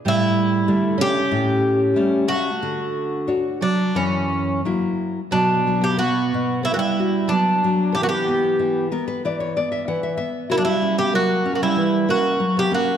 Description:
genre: fado-style ballad.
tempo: 86-97 BPM.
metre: 4/4.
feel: rubato.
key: B harmonic minor from 5.3 s.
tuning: A4 = 441 Hz.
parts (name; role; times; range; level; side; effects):
fingerpicked twelve-string acoustic guitar; second line; 0.0-13.0 s; E3 to C#4; -23 LUFS; right 4 dB; none.
Irish bouzouki; melody; 0.1-13.0 s; C#4 to G4; -21 LUFS; equal; none.
nylon-string guitar; accompaniment; 0.1-13.0 s; F#2 to F#5; -23 LUFS; left 3 dB; none.
room: wet concert hall reverb, RT60 2.0 s.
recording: dark, warm production.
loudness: -18 LUFS.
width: side -9 dB against mid.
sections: 0.0-5.3 A section; 5.3-13.0 B section.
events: nylon-string guitar fill 8.6-10.5.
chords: 0.1 A7sus4; 1.3 A7; 2.6 Dmaj7; 3.9 F#7; 5.3 Bm; 7.9 Em; 10.5 F#5.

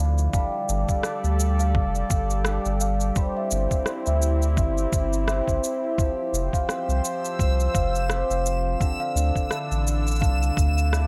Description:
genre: folktronica.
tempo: 85 BPM.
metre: 4/4.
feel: swing 56% on 16ths.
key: F major.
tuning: A4 = 440 Hz.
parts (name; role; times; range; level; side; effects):
large celesta; second line; 0.0-11.1 s; E5 to F5; -33 LUFS; equal; tape echo.
warbly tape-like pad; sustained chords; 0.0-11.1 s; D3 to D5; -34 LUFS; equal; chorus, built-in reverb.
cimbalom; arpeggios; 0.0-11.1 s; D3 to C5; -33 LUFS; equal; digital delay.
warm sub bass; bass; 0.0-11.1 s; F1 to D2; -26 LUFS; equal; none.
electronic shaker and rim click; drums; 0.2-11.1 s; none; -33 LUFS; equal; none.
electronic kick drum; drums; 0.3-10.7 s; none; -26 LUFS; equal; none.
backwards swelling texture; texture; 7.2-11.1 s; E6; -38 LUFS; equal; built-in reverb.
room: little or no reverb.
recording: none.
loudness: -24 LUFS.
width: mono.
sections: 0.0-11.1 A section.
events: none.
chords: 0.3 Gsus2; 3.2 C/G; 6.0 Fsus2; 8.8 Dmadd9.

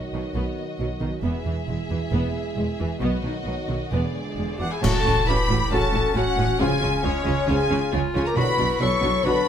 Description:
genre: cinematic, heroic adventure film score.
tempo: 135 BPM.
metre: 4/4.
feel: straight.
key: unclear.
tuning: A4 = 440 Hz.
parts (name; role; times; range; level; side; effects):
rich symphonic violin section; melody; 0.0-9.5 s; C#5 to C#6; -31 LUFS; left 1 dB; none.
warm studio violin section; second line; 0.0-9.5 s; F#4 to C#6; -32 LUFS; left 4 dB; none.
dark trombone section; sustained chords; 0.0-9.4 s; C#3 to G#3; -33 LUFS; right 3 dB; none.
warm symphonic viola section; accompaniment; 0.1-9.3 s; D#3 to F#4; -30 LUFS; right 1 dB; none.
rich symphonic cello section; bass; 0.1-9.3 s; E2 to C#3; -29 LUFS; right 2 dB; none.
rich symphonic double bass section; bass; 0.1-9.3 s; E1 to C#2; -28 LUFS; right 2 dB; none.
cymbal swell, clash cymbals and concert bass drum; percussion; 1.3-5.7 s; none; -29 LUFS; equal; none.
mellow cor anglais; second line; 4.6-9.5 s; G#3 to A4; -33 LUFS; right 2 dB; none.
silver concert flute; second line; 4.6-9.5 s; C#5 to C#6; -31 LUFS; left 2 dB; none.
mellow French horn section; sustained chords; 4.6-9.5 s; C#4 to C#5; -26 LUFS; left 5 dB; none.
bright clarinet; second line; 4.8-9.5 s; C#4 to F#4; -31 LUFS; equal; none.
room: light reverb.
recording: none.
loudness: -21 LUFS.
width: side -9 dB against mid.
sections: 0.0-4.8 A section; 4.8-9.5 B section.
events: band accent 4.8-5.3.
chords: 0.0 B; 1.3 E; 3.0 B; 3.9 E7; 4.8 A6; 6.6 C#; 8.4 Bm.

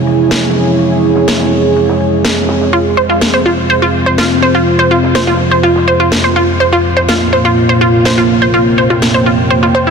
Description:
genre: melodic techno.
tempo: 124 BPM.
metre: 4/4.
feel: straight.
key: F harmonic minor.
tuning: A4 = 438 Hz.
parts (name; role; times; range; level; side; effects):
dark analog pad; sustained chords; 0.0-9.9 s; Bb2 to Ab5; -13 LUFS; right 2 dB; chorus.
analog drone; drone; 0.0-9.9 s; F2 to C3; -16 LUFS; left 1 dB; chorus.
damped 70s drum kit; drums; 0.1-9.9 s; hi-hat, ride cymbal, snare drum; -28 LUFS; left 4 dB; none.
electronic snare drum; drums; 0.3-9.1 s; none; -17 LUFS; left 1 dB; none.
wide unison pluck; arpeggios; 2.7-9.9 s; E4 to C5; -11 LUFS; right 1 dB; cassette tape, dub echo.
room: moderate huge ambient reverb, RT60 4.7 s.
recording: dense, heavily limited modern master.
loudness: -8 LUFS.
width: side -6 dB against mid.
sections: 0.0-9.9 A section.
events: none.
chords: 0.0 Dbm; 2.7 Fm; 6.6 Bbm.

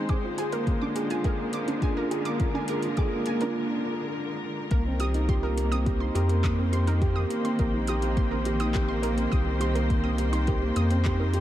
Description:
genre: piano and strings electronica.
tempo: 104 BPM.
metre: 4/4.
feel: straight.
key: unclear.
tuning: A4 = 441 Hz.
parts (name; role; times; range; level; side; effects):
rich symphonic string section; sustained chords; 0.0-11.4 s; D3 to G5; -33 LUFS; left 1 dB; none.
felt-muted upright piano; riff; 0.0-11.4 s; Bb3 to Ab4; -28 LUFS; right 1 dB; tape echo.
wide unison pluck; arpeggios; 0.1-11.3 s; Bb4 to Eb6; -37 LUFS; right 3 dB; sidechain pumping, tape echo.
deep house drum kit; drums; 0.1-11.4 s; handclaps, hi-hat; -41 LUFS; left 1 dB; overdrive, high-pass filter on hats, high-pass filter on snare, high-pass filter on room.
electronic kick drum; drums; 0.1-11.2 s; none; -27 LUFS; equal; overdrive.
round analog bass; bass; 4.7-11.4 s; Bb1 to F2; -26 LUFS; equal; sidechain pumping.
room: light reverb, digital ambience.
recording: dark, warm production.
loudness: -24 LUFS.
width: side -12 dB against mid.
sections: 0.0-4.7 A section; 4.7-11.4 B section.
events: build-up 0.0-4.7; break 3.6-4.7; drop 4.7-11.4.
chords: 0.1 Bb7; 4.7 Cm7.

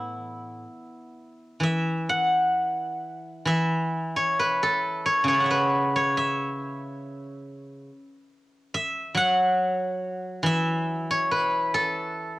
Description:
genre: chinese traditional, Chinese solo plucked strings.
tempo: 57-71 BPM.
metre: 4/4.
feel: rubato.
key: A gong mode.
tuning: A4 = 436 Hz.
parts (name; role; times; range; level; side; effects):
steel-string zither; solo; 0.0-12.4 s; A2 to B5; -23 LUFS; equal; cassette tape.
room: studio reverb.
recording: home recording on cassette.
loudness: -22 LUFS.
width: side -18 dB against mid.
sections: 0.0-1.6 A section; 1.6-12.4 B section.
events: none.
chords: none.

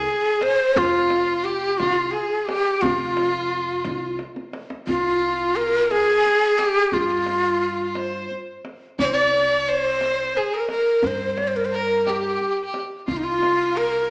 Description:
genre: Persian modal ensemble.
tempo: 58 BPM (dotted quarters).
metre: 6/8.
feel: straight.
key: C dastgah shur from 4.9 s.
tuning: A4 = 441 Hz.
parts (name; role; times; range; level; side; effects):
breathy bright ney; melody; 0.0-14.1 s; Eb4 to D5-49c; -20 LUFS; equal; none.
clear fiddle; second line; 0.0-14.1 s; F4 to Db5+43c; -27 LUFS; equal; none.
upright bass; bass; 0.0-14.1 s; F1 to G2; -34 LUFS; equal; none.
tombak; percussion; 0.4-13.6 s; none; -32 LUFS; equal; none.
room: wet recital hall reverb, RT60 1.5 s.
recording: recorded in a church or concert hall, small speaker sound.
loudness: -19 LUFS.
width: side -32 dB against mid.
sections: 0.0-4.9 A section; 4.9-14.1 B section.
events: drum fill 4.2-4.9.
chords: none.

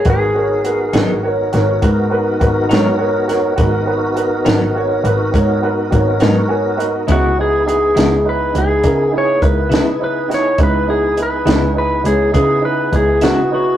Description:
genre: slow blues.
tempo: 68 BPM (dotted quarters).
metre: 12/8.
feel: straight.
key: G# minor.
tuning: A4 = 440 Hz.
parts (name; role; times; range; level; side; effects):
clean lap steel guitar; melody; 0.0-1.2, 7.1-13.8 s; F#4 to C#5; -16 LUFS; left 1 dB; none.
compact cocktail drum kit; drums; 0.0-13.4 s; hi-hat, kick drum, snare drum; -18 LUFS; equal; none.
clear upright piano; accompaniment; 0.1-13.7 s; D#4 to G#5; -19 LUFS; right 3 dB; none.
tonewheel organ; sustained chords; 0.1-13.8 s; B3 to A#4; -22 LUFS; left 1 dB; overdrive, chorus vibrato, slow rotary speaker.
clear double bass; bass; 0.1-13.8 s; G#1 to C#3; -19 LUFS; equal; none.
clean electric guitar; accompaniment; 0.9-13.4 s; G#2 to E4; -21 LUFS; left 2 dB; tremolo.
room: wet studio reverb, RT60 0.5 s.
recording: rough rehearsal-room recording, tube saturation.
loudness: -12 LUFS.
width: side -11 dB against mid.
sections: 0.0-13.8 A section.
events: upright piano fill 6.2-7.1.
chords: 0.0 G#m7; 7.1 C#m7.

